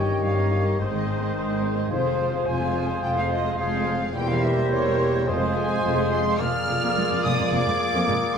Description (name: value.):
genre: classical, dramatic, fast romantic movement for symphony orchestra.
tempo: 107 BPM.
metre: 4/4.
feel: straight.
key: unclear.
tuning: A4 = 441 Hz.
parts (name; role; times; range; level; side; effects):
warm symphonic violin section; melody; 0.0-8.4 s; C5 to F6; -32 LUFS; equal; none.
rich chamber violin section; second line; 0.0-8.4 s; F4 to F5; -36 LUFS; equal; none.
silver concert flute; second line; 0.0-8.3 s; C5 to F6; -31 LUFS; left 2 dB; none.
warm clarinet; second line; 0.0-8.4 s; G4 to Bb4; -33 LUFS; equal; none.
warm oboe; second line; 0.0-8.4 s; C5-21c to D5; -35 LUFS; right 1 dB; none.
rich studio viola section; accompaniment; 0.0-8.4 s; Eb3 to G4; -31 LUFS; right 1 dB; none.
warm bassoon; accompaniment; 0.0-8.4 s; Eb3 to Bb3; -31 LUFS; right 1 dB; none.
warm French horn section; sustained chords; 0.0-8.4 s; G3 to Ab4; -30 LUFS; left 2 dB; none.
concert harp; arpeggios; 0.0-8.4 s; E2 to D6; -32 LUFS; left 3 dB; none.
clear trumpet; stabs; 0.0-8.4 s; C5 to D5; -32 LUFS; right 1 dB; none.
rich chamber double bass section; bass; 0.0-8.1 s; E1 to Ab1; -29 LUFS; right 1 dB; none.
rich symphonic cello section; bass; 0.0-8.1 s; E2 to Ab2; -31 LUFS; equal; none.
room: wet stone room reverb, RT60 1.1 s.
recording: heard from further back in the room.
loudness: -21 LUFS.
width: side -7 dB against mid.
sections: 0.0-8.4 A section.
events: none.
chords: 0.0 Eb7/G; 0.8 Ab; 1.9 Fm; 4.2 C7/E; 5.3 Fm; 6.4 Bb7/F.